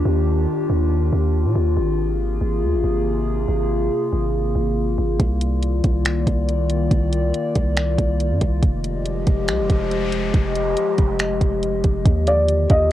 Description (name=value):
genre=hip hop, atmospheric cloud-rap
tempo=140 BPM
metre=4/4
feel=half-time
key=C minor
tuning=A4 = 440 Hz
part: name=warbly tape-like pad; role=sustained chords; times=0.0-12.9 s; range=C3 to Eb5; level=-22 LUFS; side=left 2 dB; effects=chorus, built-in reverb, sidechain pumping, cassette tape
part: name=long sustained 808-style bass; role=bass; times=0.0-12.9 s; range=F1 to Bb2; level=-21 LUFS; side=right 1 dB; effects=none
part: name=impact and noise sweep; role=sound effects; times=0.0-0.1, 8.8-12.1 s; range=none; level=-34 LUFS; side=equal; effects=none
part: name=smooth R&B drum kit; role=drums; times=5.2-12.8 s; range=finger snaps, hi-hat, kick drum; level=-19 LUFS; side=right 1 dB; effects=none
part: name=felt-muted upright piano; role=melody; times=12.3-12.9 s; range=D5 to Eb5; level=-17 LUFS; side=equal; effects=low-pass filter, cassette tape
room=little or no reverb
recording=home recording on cassette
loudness=-18 LUFS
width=side -12 dB against mid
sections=0.0-12.1 A section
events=noise sweep 8.8-12.1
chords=0.0 Ebmaj9; 1.8 Ab69; 5.2 Cm11; 8.6 Fm9; 12.1 Ebmaj9